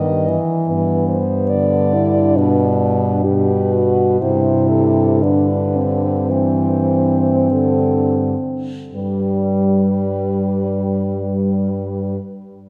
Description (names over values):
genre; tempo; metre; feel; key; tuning
classical, lyrical piece for horn quartet; 40-75 BPM; 4/4; rubato; G major; A4 = 439 Hz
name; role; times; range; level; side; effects
mellow French horn; melody; 0.0-12.2 s; A4 to Eb5; -26 LUFS; equal; none
dark French horn; second line; 0.0-12.2 s; G3 to G4; -22 LUFS; equal; none
warm French horn; accompaniment; 0.0-12.2 s; B2 to G3; -23 LUFS; equal; none
mellow French horn; bass; 0.0-12.2 s; G2; -23 LUFS; equal; none
room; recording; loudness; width
wet church reverb, RT60 2.7 s; none; -17 LUFS; mono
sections
0.0-8.9 A section; 8.9-12.7 B section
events
slowing down 0.0-8.9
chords
0.0 Cm/G (rootless); 0.7 G; 4.2 Am11/G; 8.9 G